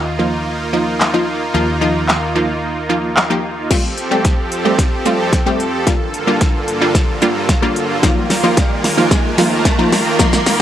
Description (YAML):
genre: dance-pop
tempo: 111 BPM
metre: 4/4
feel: straight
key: unclear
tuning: A4 = 440 Hz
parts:
  - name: supersaw pad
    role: sustained chords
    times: 0.0-10.6 s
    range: Eb2 to Bb4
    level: -19 LUFS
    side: right 1 dB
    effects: sidechain pumping
  - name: hollow-body short-scale fingered electric bass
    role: bass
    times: 0.0-3.7 s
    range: Eb2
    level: -24 LUFS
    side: equal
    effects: sidechain pumping
  - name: wide unison pluck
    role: accompaniment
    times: 0.2-10.6 s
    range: F3 to G4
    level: -17 LUFS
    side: equal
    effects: auto-pan, sidechain pumping
  - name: pop drum kit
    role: drums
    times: 1.0-10.6 s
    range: crash cymbal, handclaps, hi-hat, kick drum, shaker, snare drum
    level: -15 LUFS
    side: equal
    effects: none
  - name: riser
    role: sound effects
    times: 5.6-10.6 s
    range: none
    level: -24 LUFS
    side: right 1 dB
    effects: none
room: light reverb, digital ambience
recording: dry, gritty hardware recording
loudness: -13 LUFS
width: side -11 dB against mid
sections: 0.0-3.7 A section; 3.7-10.6 B section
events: kick muted 2.6-3.7; build-up 3.7-10.6; drum fill 3.7-10.6; riser 5.6-10.6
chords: 0.0 Ebsus2; 3.7 Fadd9; 5.9 Gm7; 8.0 Ebsus2